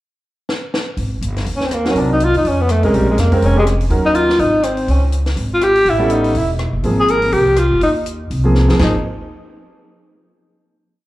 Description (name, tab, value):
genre	jazz, small-group swing and bop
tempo	246 BPM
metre	4/4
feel	swing 58% on 8ths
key	Ab major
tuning	A4 = 440 Hz
part	compact cocktail drum kit	drums	0.5-8.9 s	crash cymbal, hi-hat, kick drum, rim click, snare drum	-25 LUFS	left 1 dB	slapback echo
part	upright bass	bass	1.0-8.9 s	E1 to F2	-17 LUFS	equal	none
part	breathy tenor saxophone	melody	1.6-8.9 s	G3 to Bb4	-16 LUFS	left 1 dB	slapback echo
part	warm grand piano	accompaniment	1.8-8.9 s	F3 to Bb4	-19 LUFS	right 1 dB	slapback echo
room	light reverb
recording	live gig heard through the venue's PA, club reverb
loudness	-13 LUFS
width	side -16 dB against mid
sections	0.0-1.0 pickup bar; 1.0-8.8 A section; 8.8-9.8 final chord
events	drum fill 0.5-1.0, 8.5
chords	0.0 N.C.; 1.0 Ab5; 2.0 Cm7b5; 2.4 Fm; 2.9 Bbm9; 3.9 Ebm7; 4.4 Ab; 4.9 Db5; 5.9 A9; 6.8 Ab69